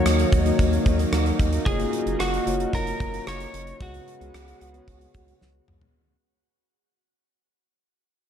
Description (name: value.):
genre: 1980s-style pop.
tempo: 112 BPM.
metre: 4/4.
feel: straight.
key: unclear.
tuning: A4 = 435 Hz.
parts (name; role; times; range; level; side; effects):
lightly driven lead guitar; melody; 0.0-5.4 s; F#4 to C#5; -30 LUFS; right 1 dB; ping-pong delay, shimmer reverb.
mellow tine electric piano; accompaniment; 0.0-6.0 s; C#3 to F#5; -28 LUFS; left 7 dB; lush chorus.
lush unison pad; sustained chords; 0.0-5.9 s; C#3 to F#4; -32 LUFS; right 3 dB; chorus, shimmer reverb.
mellow electric guitar; riff; 0.0-2.2 s; F#3 to F#4; -32 LUFS; right 5 dB; wide subtle chorus, ping-pong delay, shimmer reverb.
round analog bass; bass; 0.1-5.9 s; F#1 to D#2; -26 LUFS; equal; none.
gated 80s drum kit; drums; 0.1-5.9 s; hi-hat, kick drum, rim click, snare drum, toms; -25 LUFS; equal; none.
room: light reverb, small room ambience.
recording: dark, warm production.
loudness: -20 LUFS.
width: side -9 dB against mid.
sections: 0.0-5.9 A section.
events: fade-out 0.0-5.9; drum fill 5.4-5.9.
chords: 0.0 D#m; 1.7 F#maj7; 3.8 C#7sus4.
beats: 0.06 0.59 1.13 | 1.66 2.20 2.73 3.27 | 3.81 4.34 4.88 5.41.